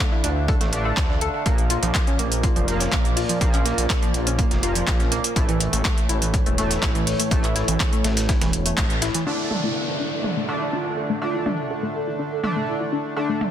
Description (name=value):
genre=melodic techno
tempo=123 BPM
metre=4/4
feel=straight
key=D harmonic minor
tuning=A4 = 440 Hz
part: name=dark analog pad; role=sustained chords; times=0.1-13.5 s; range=A3 to F5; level=-32 LUFS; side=left 1 dB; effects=chorus, phaser, sidechain pumping
part: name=sync-sweep polysynth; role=stabs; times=0.0-13.5 s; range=A2 to D4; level=-28 LUFS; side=right 2 dB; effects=chorus, sidechain pumping, digital delay
part: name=dusty soul sampler-style drum kit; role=drums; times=0.0-9.3 s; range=hi-hat, snare drum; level=-34 LUFS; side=left 1 dB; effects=high-pass filter on hats, high-pass filter on snare
part: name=electronic kick drum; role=drums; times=0.0-8.9 s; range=none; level=-22 LUFS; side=equal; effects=overdrive
part: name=soft round pluck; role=arpeggios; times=0.1-13.4 s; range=E3 to A4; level=-27 LUFS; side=left 1 dB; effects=chorus, sidechain pumping, digital delay
part: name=gritty driven synth bass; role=bass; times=0.2-9.1 s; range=E1 to D2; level=-26 LUFS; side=equal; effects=sidechain pumping
part: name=techno drum kit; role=drums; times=0.2-13.5 s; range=handclaps, hi-hat, toms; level=-26 LUFS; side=right 1 dB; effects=sidechain pumping on cymbals, low-pass filter on cymbals, sidechain pumping on hats, low-pass filter on hats, low-pass filter on snare, sidechain pumping on toms, low-pass filter on toms, low-pass filter on room
part: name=expressive synth lead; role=melody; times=9.3-13.4 s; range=D4 to A4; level=-30 LUFS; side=right 1 dB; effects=analog chorus, sidechain pumping, tape echo
part: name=downlifter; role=sound effects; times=9.3-13.2 s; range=none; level=-31 LUFS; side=equal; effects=none
room=light reverb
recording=dense, heavily limited modern master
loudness=-19 LUFS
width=side -10 dB against mid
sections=0.0-9.3 A section; 9.3-13.5 B section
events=band accent 8.8; filter sweep on drum 9.3-13.5; filter sweep on analog synth lead 9.3-13.5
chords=0.0 Dmadd9; 1.5 Bb; 5.4 A; 9.3 Dsus2